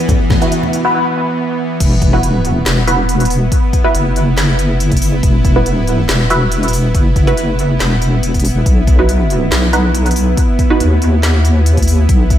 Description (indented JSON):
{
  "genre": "deep dubstep",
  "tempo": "140 BPM",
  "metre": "4/4",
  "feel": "half-time",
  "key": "unclear",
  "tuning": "A4 = 440 Hz",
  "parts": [
    { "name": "bowed-like drone", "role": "sustained chords", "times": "0.0-12.4 s", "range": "E3 to E4", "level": "-19 LUFS", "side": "right 1 dB", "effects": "built-in reverb" },
    { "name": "deep house drum kit", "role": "drums", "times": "0.1-12.4 s", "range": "crash cymbal, handclaps, hi-hat, snare drum", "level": "-21 LUFS", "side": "left 1 dB", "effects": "studio ambience" },
    { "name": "electronic kick drum", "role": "drums", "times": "0.1-12.4 s", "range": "none", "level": "-13 LUFS", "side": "equal", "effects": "studio ambience" },
    { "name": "congas", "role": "percussion", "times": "0.1-0.7 s", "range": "none", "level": "-20 LUFS", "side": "left 2 dB", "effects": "dub echo" },
    { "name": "filtered dub chord stab", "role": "stabs", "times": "0.4-10.8 s", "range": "D#4 to B4", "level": "-18 LUFS", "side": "right 2 dB", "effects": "phaser, analog chorus, dub echo" },
    { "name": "deep soft wobble bass", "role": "bass", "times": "1.8-12.4 s", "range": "E1 to D#2", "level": "-13 LUFS", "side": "equal", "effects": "chorus" }
  ],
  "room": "moderate lush hall reverb, RT60 1.7 s",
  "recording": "dreamy mix soaked in reverb",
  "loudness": "-11 LUFS",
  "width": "side -11 dB against mid",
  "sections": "0.0-1.8 A section; 1.8-12.4 B section",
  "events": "build-up 0.0-1.8; filter sweep on synth stab 0.0-1.8; break 0.9-1.8; drop 1.8-12.4",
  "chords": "0.0 Esus2; 8.7 B"
}